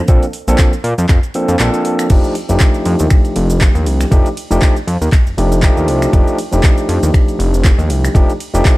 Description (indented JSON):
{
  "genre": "nu-disco, nu disco",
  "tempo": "119 BPM",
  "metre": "4/4",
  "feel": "swing 56% on 16ths",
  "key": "F mixolydian",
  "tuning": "A4 = 444 Hz",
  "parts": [
    { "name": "overdriven tine electric piano", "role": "accompaniment", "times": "0.0-8.8 s", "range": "F3 to A4", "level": "-17 LUFS", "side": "equal", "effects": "vintage 12-bit sampler grit, tape echo" },
    { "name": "fat analog bass", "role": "bass", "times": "0.1-8.6 s", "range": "F1 to Bb2", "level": "-15 LUFS", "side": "equal", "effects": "none" },
    { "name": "electronic kick drum", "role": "drums", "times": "0.1-8.8 s", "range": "none", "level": "-10 LUFS", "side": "equal", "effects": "none" },
    { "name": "pop drum kit", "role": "drums", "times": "0.1-8.8 s", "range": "cabasa, crash cymbal, finger snaps, handclaps, hi-hat, ride cymbal", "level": "-22 LUFS", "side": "equal", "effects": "overdrive" }
  ],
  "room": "little or no reverb",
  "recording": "none",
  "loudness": "-11 LUFS",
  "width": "side -19 dB against mid",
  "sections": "0.0-8.8 A section",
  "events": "kick drops out 1.6-2.1",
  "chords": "0.0 Bbmaj9; 2.1 F13"
}